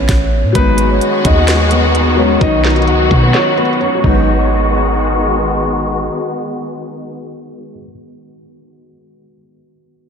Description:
hip hop, trap; 129 BPM; 4/4; half-time; G# minor; A4 = 440 Hz
dark grand piano; melody; 0.0-5.6 s; B3 to F#5; -18 LUFS; right 1 dB; lush chorus, analog delay
warm 808-style bass; bass; 0.0-6.1 s; G#1 to B2; -16 LUFS; equal
trap drum kit; drums; 0.1-4.1 s; crash cymbal, handclaps, hi-hat, kick drum, snare drum; -18 LUFS; equal
felt-muted upright piano; accompaniment; 0.5-10.1 s; D#3 to D#4; -20 LUFS; left 5 dB; lush chorus
muted studio string section; sustained chords; 0.6-7.8 s; D#3 to F#4; -17 LUFS; left 2 dB
wet cathedral reverb, RT60 4.9 s; dreamy mix soaked in reverb, low-pass filter; -11 LUFS; side -6 dB against mid
0.6-4.3 A section; 4.3-8.0 B section
kick muted 3.3-4.3
0.0 A; 0.6 G#m7; 2.4 B; 4.0 G#m7

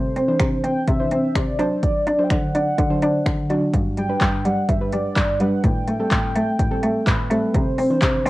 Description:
dance-pop; 126 BPM; 4/4; straight; G major; A4 = 441 Hz
warm velvety synth lead; melody; 0.0-8.3 s; B4 to G5; -26 LUFS; equal; chorus, cassette tape, analog delay
rich cello; bass; 0.0-8.3 s; G2 to D4; -22 LUFS; equal; sidechain pumping
deep house drum kit; drums; 0.2-8.3 s; finger snaps, handclaps, hi-hat, kick drum; -21 LUFS; equal; cassette tape
soft round pluck; accompaniment; 0.3-8.3 s; E3 to C5; -26 LUFS; right 1 dB; chorus, sidechain pumping, cassette tape
light reverb; home recording on cassette; -18 LUFS; side -18 dB against mid
0.0-8.3 A section
0.0 Cadd9; 1.6 D7; 3.7 G; 5.6 Am7; 7.5 Cadd9

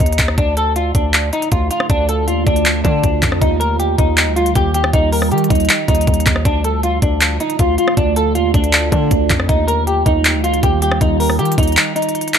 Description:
hip hop, trap; 158 BPM; 4/4; half-time; D phrygian; A4 = 442 Hz
semi-hollow electric guitar; melody; 0.0-12.4 s; D4 to Bb4; -18 LUFS; equal; lush chorus, low-pass filter, digital delay
distorted 808-style bass; bass; 0.0-11.8 s; D2 to Eb3; -18 LUFS; equal; distortion
trap drum kit; drums; 0.0-12.4 s; handclaps, hi-hat, kick drum, rim click; -16 LUFS; equal
deep dark ambient pad; sustained chords; 1.5-12.4 s; D3 to F4; -22 LUFS; right 3 dB; chorus, built-in reverb
light reverb; -13 LUFS; side -8 dB against mid
0.0-12.4 A section
kick muted 11.8-12.4
0.4 Dm; 3.4 Ebadd9; 6.5 Dm; 9.5 Ebadd9

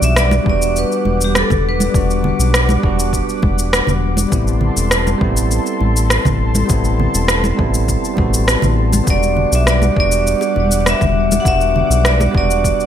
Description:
sunset chillout; 101 BPM; 4/4; straight; E minor; A4 = 440 Hz
vibraphone with hard mallets; melody; 0.0-2.5, 9.1-12.9 s; G4 to F#5; -19 LUFS; equal; ping-pong delay, shimmer reverb
bell-like tine electric piano; accompaniment; 0.0-12.9 s; G3 to F#4; -22 LUFS; moving between left 7 dB and right 7 dB; auto-pan, low-pass filter, ping-pong delay, shimmer reverb
airy breathy pad; sustained chords; 0.0-12.9 s; G3 to D6; -23 LUFS; left 1 dB; chorus, shimmer reverb
round analog bass; bass; 0.0-12.7 s; E1 to B1; -17 LUFS; equal; tube saturation
electronic shaker and rim click; drums; 0.0-12.9 s; -19 LUFS; equal; overdrive, studio reverb, gated reverb
congas and bongos; percussion; 0.3-12.3 s; -23 LUFS; right 2 dB
electronic kick drum; drums; 0.5-12.8 s; -20 LUFS; equal; overdrive, studio reverb
moderate plate reverb, RT60 1.7 s; bright 1980s-style digital production; -13 LUFS; side -9 dB against mid
0.0-12.9 A section
0.0 Em9; 4.3 Am9; 9.1 Em9

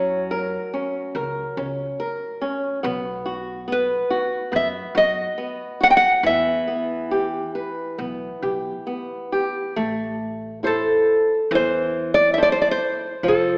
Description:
fado-style ballad; 70 BPM; 4/4; rubato; E harmonic minor, A minor from 9.8 s; A4 = 440 Hz
nylon-string guitar; melody; 0.0-13.6 s; A4 to G5; -21 LUFS; equal
flamenco guitar; accompaniment; 0.0-13.6 s; E3 to C5; -28 LUFS; equal
upright bass; bass; 0.0-13.6 s; F1 to F#2; -37 LUFS; equal
moderate scoring stage reverb, RT60 1.7 s; recorded in a church or concert hall, AM radio sound; -22 LUFS; mono
0.0-9.8 A section; 9.8-13.6 B section
0.0 F#; 2.8 B; 6.2 Em; 9.8 Am

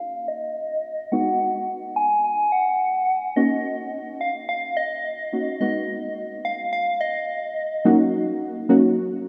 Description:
pop; 107 BPM; 4/4; straight; Eb minor; A4 = 440 Hz
soft struck synth lead; melody; 0.0-7.8 s; Eb5 to G#5; -26 LUFS; equal; chorus, tremolo, low-pass filter, analog delay
deep mellow chord stab; accompaniment; 0.0-9.3 s; Gb3 to Gb4; -23 LUFS; equal; chorus, low-pass filter
wet lush hall reverb, RT60 3.3 s; dreamy mix soaked in reverb, studio ambience; -23 LUFS; mono
0.0-7.8 A section; 7.8-9.3 B section
filter sweep 0.0-7.8; drop 7.8-9.3
0.0 Ebm7; 1.1 B6; 3.4 Gb6; 5.6 Abm7; 7.8 Ebm7

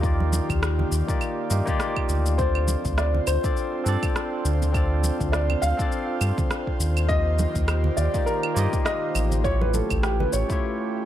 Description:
sunset chillout; 102 BPM; 4/4; swing 57% on 16ths; D phrygian; A4 = 440 Hz
barky tine electric piano; accompaniment; 0.0-11.1 s; A3 to Eb5; -29 LUFS; equal; auto-pan, low-pass filter, digital delay
airy breathy pad; sustained chords; 0.0-11.1 s; Eb3 to D5; -32 LUFS; left 1 dB; chorus
round analog bass; bass; 0.0-10.4 s; A1 to G2; -23 LUFS; equal
electronic kick drum; drums; 0.0-10.6 s; -27 LUFS; equal
electronic shaker, claves and rim click; drums; 0.0-10.6 s; -32 LUFS; right 1 dB
congas; percussion; 0.2-10.3 s; -34 LUFS; right 4 dB
dark baby grand piano; melody; 2.4-10.6 s; G4 to F5; -28 LUFS; equal; digital delay
light reverb; -21 LUFS; side -12 dB against mid
0.0-11.1 A section
break 10.6-11.1
0.0 Ebmaj7; 2.4 Dm7; 7.1 Ebmaj7; 9.4 A7b13

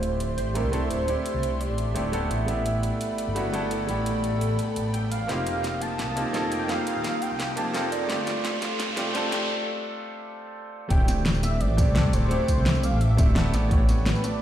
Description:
liquid drum and bass; 171 BPM; 4/4; straight; D minor; A4 = 440 Hz
warm velvety synth lead; melody; 0.0-8.6, 10.9-14.4 s; A4 to A5; -32 LUFS; right 1 dB; chorus, dub echo
clear concert grand piano; accompaniment; 0.0-14.4 s; A3 to A4; -29 LUFS; right 1 dB; low-pass filter, ping-pong delay
airy breathy pad; sustained chords; 0.0-14.4 s; Bb3 to Eb6; -35 LUFS; left 2 dB; chorus
dark detuned saw bass; bass; 0.0-14.1 s; D1 to C2; -27 LUFS; equal
pop drum kit; drums; 0.0-14.3 s; hi-hat, snare drum, tambourine; -32 LUFS; equal; high-pass filter on hats, high-pass filter on snare, high-pass filter on toms, high-pass filter on perc
riser; sound effects; 1.9-9.5 s; -36 LUFS; right 1 dB
electronic kick drum; drums; 10.9-13.8 s; -22 LUFS; equal
moderate lush hall reverb, RT60 1.9 s, digital ambience; played on a big sound system in a bare room, stone room reverb, high-pass filter; -22 LUFS; side -11 dB against mid
0.0-10.9 A section; 10.9-14.4 B section
build-up 0.0-10.9; filter sweep 0.0-10.9; riser 1.9-9.5; drum fill 5.3-9.5; break 9.5-10.9; drop 10.9-14.4
0.0 D9sus4; 2.3 A9sus4; 5.3 F9sus4; 8.1 G9sus4; 10.9 D9sus4; 13.5 A9sus4

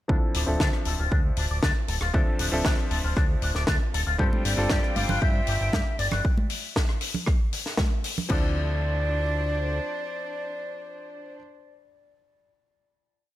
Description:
nu-disco, nu disco; 117 BPM; 4/4; straight; D minor; A4 = 440 Hz
warm electric grand piano; accompaniment; 0.1-11.4 s; F3 to E5; -33 LUFS; left 1 dB; sidechain pumping, low-pass filter, slapback echo
electric guitar with an envelope filter; riff; 0.1-8.5 s; D4 to G5; -32 LUFS; left 4 dB; wide subtle chorus, slapback echo
fat analog bass; bass; 0.1-9.8 s; D1 to G2; -28 LUFS; equal; tube saturation
electronic kick drum; drums; 0.1-8.4 s; -24 LUFS; equal; overdrive
tight funk drum kit; drums; 0.3-8.4 s; crash cymbal, hi-hat, rim click, snare drum; -30 LUFS; left 2 dB
breathy concert flute; melody; 4.2-11.4 s; C5 to F5; -32 LUFS; equal; analog delay
rich studio violin section; sustained chords; 4.2-11.4 s; C4 to G5; -36 LUFS; right 1 dB; vintage 12-bit sampler grit, sidechain pumping
congas; percussion; 4.3-8.3 s; -33 LUFS; right 2 dB
small room reverb; -23 LUFS; side -14 dB against mid
0.1-8.3 groove; 8.3-12.4 final chord
filter sweep on electric grand piano 0.1-6.2
0.1 Dm7; 4.2 G7sus4; 8.3 Dm7

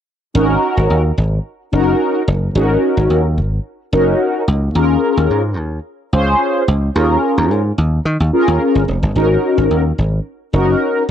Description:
early-eighties boogie funk; 109 BPM; 4/4; straight; A4 = 440 Hz
mellow synth brass; accompaniment; 0.3-11.0 s; C#4 to B#4; -15 LUFS; left 1 dB; chorus, phaser
dry thumbed slap bass; bass; 0.3-11.1 s; E#1 to D#3; -15 LUFS; equal
light reverb; -13 LUFS; side -9 dB against mid
0.3-11.1 A section
0.3 G#9sus4; 4.8 D#9sus4; 9.2 G#9sus4

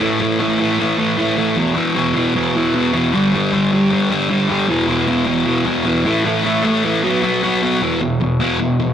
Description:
punk; 154 BPM; 4/4; straight; A4 = 440 Hz
sludgy distorted guitar; solo; 0.0-8.9 s; E2 to B3; -14 LUFS; equal; overdrive
wet stone room reverb, RT60 1.2 s; rough rehearsal-room recording, tube saturation; -14 LUFS; side -9 dB against mid
0.0-7.8 A section; 7.8-8.9 B section
0.0 A5; 1.6 E5; 3.1 G5; 4.7 E5; 6.1 A5; 7.0 B5; 7.8 E5

